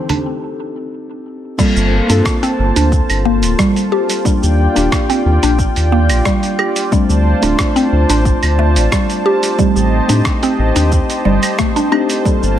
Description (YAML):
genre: organic downtempo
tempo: 90 BPM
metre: 4/4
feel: straight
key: G minor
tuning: A4 = 440 Hz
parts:
  - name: muted felt-like synth keys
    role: accompaniment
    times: 0.0-12.6 s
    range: A3 to A4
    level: -21 LUFS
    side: left 2 dB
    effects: chorus, sidechain pumping, tape echo
  - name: warm analog pad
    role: sustained chords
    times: 0.0-12.6 s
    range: Eb3 to A5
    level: -20 LUFS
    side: right 1 dB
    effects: wide subtle chorus, sidechain pumping
  - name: mallet-like synth pluck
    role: arpeggios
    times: 0.1-12.6 s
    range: G3 to G4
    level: -17 LUFS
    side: equal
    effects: chorus, phaser, tape echo
  - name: dusty soul sampler-style drum kit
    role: drums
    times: 0.1-12.6 s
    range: claves, crash cymbal, hi-hat, rim click, shaker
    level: -21 LUFS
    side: right 2 dB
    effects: none
  - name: electronic kick drum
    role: drums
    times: 1.6-12.4 s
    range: none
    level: -17 LUFS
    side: equal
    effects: overdrive
  - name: round analog bass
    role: bass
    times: 1.8-12.6 s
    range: D1 to A2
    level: -14 LUFS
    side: equal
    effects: sidechain pumping
room: light reverb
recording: none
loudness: -11 LUFS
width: side -11 dB against mid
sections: 0.0-1.6 A section; 1.6-12.6 B section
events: break 0.3-1.6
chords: 0.0 Am7b5; 1.6 Gm11; 4.3 Ebmaj9; 6.9 Dm7; 9.6 Am7b5